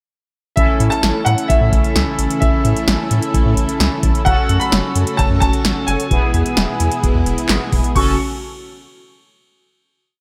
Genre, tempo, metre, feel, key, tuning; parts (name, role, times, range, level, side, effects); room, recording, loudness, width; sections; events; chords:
synth-pop; 130 BPM; 4/4; straight; F# minor; A4 = 441 Hz
clear concert grand piano; melody; 0.6-8.2 s; E5 to C#6; -24 LUFS; equal; lush chorus
analog synth brass; accompaniment; 0.6-8.2 s; B3 to A4; -24 LUFS; equal; chorus
string machine, violins; sustained chords; 0.6-8.2 s; B2 to F#4; -28 LUFS; equal; ensemble chorus
round analog bass; bass; 0.6-8.2 s; E1 to A2; -21 LUFS; equal
electro analog drum machine; drums; 0.6-8.1 s; crash cymbal, handclaps, hi-hat, kick drum, snare drum; -20 LUFS; equal; overdrive, gated reverb
moderate plate reverb, RT60 1.9 s; bright 1980s-style digital production; -16 LUFS; mono
0.6-8.0 pre-chorus; 8.0-9.8 final chord
0.6 A; 4.3 F#m; 6.1 E; 8.0 F#m